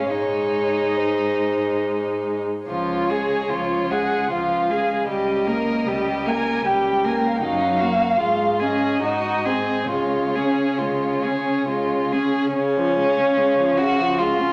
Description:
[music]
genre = classical, slow romantic movement for string quartet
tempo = 66-79 BPM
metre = 3/4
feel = rubato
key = Db major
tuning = A4 = 440 Hz
[part]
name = muted violin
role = melody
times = 0.0-14.5 s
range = C5 to Ab5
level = -28 LUFS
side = equal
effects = none
[part]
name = muted violin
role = second line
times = 0.0-14.5 s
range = Db4 to Bb4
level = -26 LUFS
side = equal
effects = none
[part]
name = muted viola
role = accompaniment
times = 0.0-14.5 s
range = Db3 to Eb4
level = -26 LUFS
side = equal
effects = none
[part]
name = muted cello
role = bass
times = 0.0-14.5 s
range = Db2 to Db3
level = -32 LUFS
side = equal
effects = none
[sound]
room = wet recital hall reverb, RT60 1.5 s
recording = none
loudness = -21 LUFS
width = mono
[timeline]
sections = 0.0-12.6 A section; 12.6-14.5 A section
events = none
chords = 0.1 Ab; 2.7 Db; 5.1 Eb7/Db; 7.4 Ebm/Gb; 8.2 Db/Ab; 9.0 Ab7; 9.9 Db

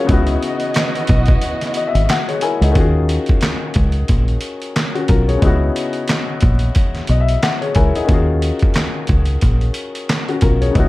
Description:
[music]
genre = hip hop, boom-bap hip-hop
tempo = 90 BPM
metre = 4/4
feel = swing 56% on 16ths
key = Eb phrygian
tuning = A4 = 440 Hz
[part]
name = warm upright piano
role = accompaniment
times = 0.0-10.9 s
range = Db3 to Ab5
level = -20 LUFS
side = left 4 dB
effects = high-pass filter, low-pass filter
[part]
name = warm studio string section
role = sustained chords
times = 0.0-2.7 s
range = Fb3 to Eb5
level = -25 LUFS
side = right 2 dB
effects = high-pass filter, low-pass filter
[part]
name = deep dub fingered electric bass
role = bass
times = 0.1-10.9 s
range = Ab1 to Eb2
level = -16 LUFS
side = equal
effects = none
[part]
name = trip hop sampler-style drum kit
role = drums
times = 0.1-10.9 s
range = handclaps, hi-hat, kick drum, snare drum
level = -17 LUFS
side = equal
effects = none
[part]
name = finger snap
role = percussion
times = 0.8-2.3 s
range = none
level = -34 LUFS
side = right 16 dB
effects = none
[sound]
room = light reverb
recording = vinyl crackle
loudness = -14 LUFS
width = side -18 dB against mid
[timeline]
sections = 0.0-2.8 A section; 2.8-10.9 B section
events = kick muted 1.4-2.8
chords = 0.1 Dbm11; 2.8 Ebm11; 5.4 Dbm11; 8.1 Ebm11

